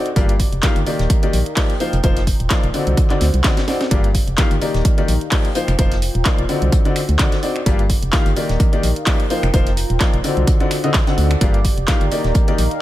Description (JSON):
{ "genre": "piano house", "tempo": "128 BPM", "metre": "4/4", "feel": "swing 55% on 16ths", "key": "G minor", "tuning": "A4 = 439 Hz", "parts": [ { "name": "clear grand piano", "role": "riff", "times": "0.0-12.6 s", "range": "G2 to F#5", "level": "-21 LUFS", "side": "left 2 dB", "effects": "sidechain pumping" }, { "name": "warbly tape-like pad", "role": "texture", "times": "0.0-12.8 s", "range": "D4 to Bb5", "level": "-29 LUFS", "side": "equal", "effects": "chorus, built-in reverb, sidechain pumping" }, { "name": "house drum kit", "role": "drums", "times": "0.1-12.8 s", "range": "finger snaps, handclaps, hi-hat, snare drum", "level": "-24 LUFS", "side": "right 1 dB", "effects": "overdrive" }, { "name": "organ-like FM bass", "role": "bass", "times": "0.2-12.7 s", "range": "Eb1 to D2", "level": "-19 LUFS", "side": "equal", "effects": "sidechain pumping" }, { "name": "electronic kick drum", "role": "drums", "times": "0.2-12.5 s", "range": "none", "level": "-17 LUFS", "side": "equal", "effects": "overdrive" }, { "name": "vintage brush drum kit", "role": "drums", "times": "0.2-12.7 s", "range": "hi-hat, snare drum", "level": "-32 LUFS", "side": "left 2 dB", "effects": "none" } ], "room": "small room ambience", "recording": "none", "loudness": "-14 LUFS", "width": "side -15 dB against mid", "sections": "0.0-12.8 A section", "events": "fade-in on ambient pad 0.0-12.8; drum fill 3.2-3.9", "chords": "0.2 Gm7; 0.9 Ebmaj7; 1.8 F7sus4; 3.0 D7b9; 3.9 Gm7; 4.6 Ebmaj7; 5.6 F7sus4; 6.7 D7b9; 7.7 Gm7; 8.4 Ebmaj7; 9.3 F7sus4; 10.5 D7b9; 11.4 Gm7; 12.1 Ebmaj7" }